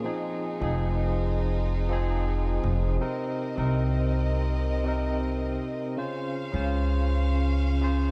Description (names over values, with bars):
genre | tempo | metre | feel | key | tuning
trip hop | 81 BPM | 4/4 | swing 54% on 16ths | unclear | A4 = 437 Hz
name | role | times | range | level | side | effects
barky tine electric piano | accompaniment | 0.0-8.1 s | C3 to C5 | -33 LUFS | equal | tremolo, tape echo
rich chamber violin section | sustained chords | 0.0-8.1 s | C4 to F5 | -38 LUFS | equal | none
upright bass | bass | 0.6-8.1 s | F1 to Db2 | -28 LUFS | equal | tube saturation
room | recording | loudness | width
small room ambience | dark, warm production | -27 LUFS | mono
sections
0.0-8.1 A section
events
none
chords
0.0 Fm7; 3.0 Cm7; 6.0 Dbmaj7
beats
| 0.04 0.78 1.52 2.26 | 3.00 3.74 4.48 5.22 | 5.96 6.70 7.45